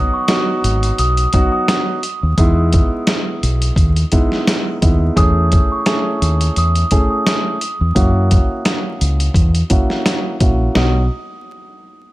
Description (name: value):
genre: hip hop, boom-bap hip-hop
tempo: 86 BPM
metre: 4/4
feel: swing 55% on 16ths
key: B major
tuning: A4 = 442 Hz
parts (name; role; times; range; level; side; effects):
- glockenspiel with rubber mallets; melody; 0.0-11.1 s; C#6 to D#6; -23 LUFS; right 2 dB; high-pass filter, low-pass filter, ping-pong delay
- dark baby grand piano; accompaniment; 0.0-11.0 s; F#3 to G#4; -20 LUFS; equal; cassette tape, high-pass filter, low-pass filter
- dusty soul sampler-style drum kit; drums; 0.3-10.9 s; hi-hat, kick drum, snare drum; -16 LUFS; equal; none
- deep dub fingered electric bass; bass; 0.6-11.1 s; G#1 to F#2; -15 LUFS; equal; none
room: little or no reverb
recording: vinyl crackle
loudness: -13 LUFS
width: side -17 dB against mid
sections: 0.0-10.8 A section; 10.8-12.1 B section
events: filter sweep 0.0-10.8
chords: 0.0 B; 2.4 Emaj7; 5.2 Amaj7; 8.0 F#7; 10.8 B